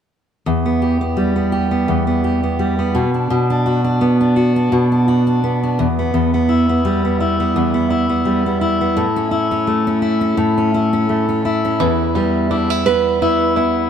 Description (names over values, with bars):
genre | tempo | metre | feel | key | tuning
pop | 85 BPM | 4/4 | swing 55% on 16ths | unclear | A4 = 439 Hz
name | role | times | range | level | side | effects
fingerpicked steel-string acoustic guitar | accompaniment | 0.5-13.9 s | E2 to G4 | -14 LUFS | equal | none
bluegrass banjo | arpeggios | 11.8-13.9 s | E3 to E4 | -22 LUFS | right 4 dB | none
nylon-string guitar | melody | 12.9-13.5 s | B4 | -18 LUFS | right 8 dB | none
room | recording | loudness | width
moderate plate reverb, RT60 2.9 s | heard from further back in the room | -14 LUFS | side -8 dB against mid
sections
0.5-11.8 A section; 11.8-13.9 B section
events
none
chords
0.5 Em; 2.9 Bm; 5.8 Em; 9.0 A; 11.8 Em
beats
| 0.46 1.17 1.88 2.59 | 3.30 4.01 4.71 5.42 | 6.13 6.84 7.55 8.26 | 8.97 9.68 10.38 11.09 | 11.80 12.51 13.21